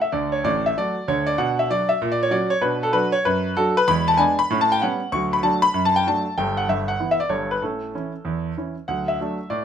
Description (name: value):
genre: jazz, stride piano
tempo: 193 BPM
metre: 4/4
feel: swing 64% on 8ths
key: D major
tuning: A4 = 440 Hz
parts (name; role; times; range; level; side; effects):
- clear concert grand piano; solo; 0.0-9.6 s; G1 to C#6; -19 LUFS; equal; none
room: moderate studio reverb, RT60 0.8 s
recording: minimal, uncompressed stereo recording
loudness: -19 LUFS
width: side -8 dB against mid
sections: 0.0-8.9 A section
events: none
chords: 0.1 D; 1.4 Bm; 2.0 F#/A#; 2.6 Bm; 3.9 E7; 4.5 A13; 5.1 D; 5.7 D/F#; 6.4 Em/G; 7.6 A; 8.9 D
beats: | 0.14 0.45 0.77 1.08 | 1.39 1.70 2.01 2.32 | 2.63 2.94 3.26 3.57 | 3.88 4.19 4.50 4.81 | 5.12 5.44 5.75 6.06 | 6.37 6.68 6.99 7.30 | 7.62 7.93 8.24 8.55 | 8.86 9.17 9.48